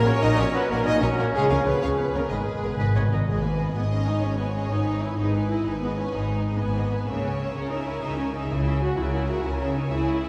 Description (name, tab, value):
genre	cinematic, heroic adventure film score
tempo	126 BPM (dotted quarters)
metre	12/8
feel	straight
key	G# minor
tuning	A4 = 439 Hz
part	rich studio violin section	melody	0.0-10.3 s	G#4 to D#5	-36 LUFS	equal	none
part	concert flute	second line	0.0-3.1 s	G#4 to D#5	-36 LUFS	equal	none
part	mellow clarinet	second line	0.0-3.1 s	G#4 to D#5	-34 LUFS	equal	none
part	warm symphonic viola section	accompaniment	0.0-10.3 s	G#3 to B4	-32 LUFS	equal	none
part	mellow French horn section	sustained chords	0.0-3.1 s	G#3 to D#4	-31 LUFS	equal	none
part	warm trombone section	sustained chords	0.0-3.1 s	D#3 to C#4	-32 LUFS	equal	none
part	rich symphonic violin section	second line	0.2-10.3 s	E#4 to G#5	-38 LUFS	equal	none
part	rich symphonic cello section	bass	0.2-10.3 s	G#2 to C#3	-31 LUFS	equal	none
part	rich symphonic double bass section	bass	0.2-10.3 s	G#1 to C#2	-31 LUFS	equal	none
part	timpani	percussion	2.3-3.7 s	G#2	-30 LUFS	equal	none
part	bright oboe	second line	2.8-3.3 s	B4 to D#5	-39 LUFS	equal	none
room	wet scoring stage reverb, RT60 1.8 s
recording	heard from further back in the room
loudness	-25 LUFS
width	mono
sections	0.0-3.3 A section; 3.3-10.3 B section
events	timpani fill 2.3-3.3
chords	0.0 F#/A#; 1.3 C#; 2.3 G#m; 7.1 C#m